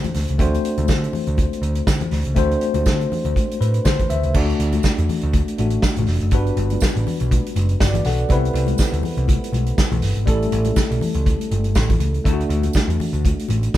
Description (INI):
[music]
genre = disco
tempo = 121 BPM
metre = 4/4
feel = swing 56% on 16ths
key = unclear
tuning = A4 = 440 Hz
[part]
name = tine electric piano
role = accompaniment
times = 0.0-13.8 s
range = G3 to F#5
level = -23 LUFS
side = left 2 dB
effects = medium stereo tremolo
[part]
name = warm soul drum kit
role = drums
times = 0.0-13.8 s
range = crash cymbal, hi-hat, kick drum, snare drum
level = -21 LUFS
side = right 1 dB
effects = none
[part]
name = congas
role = percussion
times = 0.0-13.8 s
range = none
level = -29 LUFS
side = left 5 dB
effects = none
[part]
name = picked electric bass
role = bass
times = 0.1-13.7 s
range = F1 to D3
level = -21 LUFS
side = equal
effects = none
[part]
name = tambourine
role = percussion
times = 0.9-13.8 s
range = none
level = -37 LUFS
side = right 8 dB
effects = none
[sound]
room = light reverb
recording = band playing live in one room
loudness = -17 LUFS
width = side -13 dB against mid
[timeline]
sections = 0.0-4.3 A section; 4.3-13.8 B section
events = tine electric piano fill 3.4-4.3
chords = 0.0 D7; 4.3 D; 6.3 Gmaj7; 8.3 Cmaj7; 10.3 A7; 12.3 D